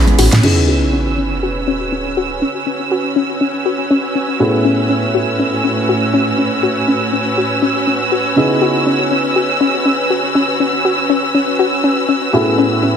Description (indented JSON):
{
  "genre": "deep house",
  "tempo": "121 BPM",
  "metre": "4/4",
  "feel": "swing 56% on 16ths",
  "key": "C# minor",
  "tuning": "A4 = 443 Hz",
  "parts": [
    { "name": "felt-muted upright piano", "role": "stabs", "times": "0.0-13.0 s", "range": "A2 to G#4", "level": "-19 LUFS", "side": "equal", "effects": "low-pass filter, ping-pong delay" },
    { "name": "dark studio string section", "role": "texture", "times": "0.0-13.0 s", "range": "A2 to E6", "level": "-18 LUFS", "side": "right 1 dB", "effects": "none" },
    { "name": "muted studio violin section", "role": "texture", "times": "0.0-13.0 s", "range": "B5 to E6", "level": "-21 LUFS", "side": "right 6 dB", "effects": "none" },
    { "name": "deep house drum kit", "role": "drums", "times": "0.1-0.5 s", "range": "crash cymbal, hi-hat, snare drum", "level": "-19 LUFS", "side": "left 1 dB", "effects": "overdrive" },
    { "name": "soft round pluck", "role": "arpeggios", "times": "0.2-12.9 s", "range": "C#4 to F#4", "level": "-18 LUFS", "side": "left 3 dB", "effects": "chorus, ping-pong delay" },
    { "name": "sub drop", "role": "sound effects", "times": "0.4-2.4 s", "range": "none", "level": "-20 LUFS", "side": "right 1 dB", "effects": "none" }
  ],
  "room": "moderate plate reverb, RT60 1.7 s, small room reverb",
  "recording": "none",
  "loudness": "-13 LUFS",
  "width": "side -7 dB against mid",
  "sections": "0.4-13.0 A section",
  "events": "drum fill 0.0-0.4; band accent 0.3; impact 0.4-2.4; filter sweep on synth arpeggio sound 0.4-13.0",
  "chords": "0.4 C#m9; 4.4 Amaj7; 8.4 C#m9; 12.3 Amaj7",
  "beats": "| 0.43 0.93 1.43 1.92 | 2.42 2.91 3.41 3.90 | 4.40 4.90 5.39 5.89 | 6.38 6.88 7.38 7.87 | 8.37 8.86 9.36 9.86 | 10.35 10.85 11.34 11.84 | 12.34 12.83"
}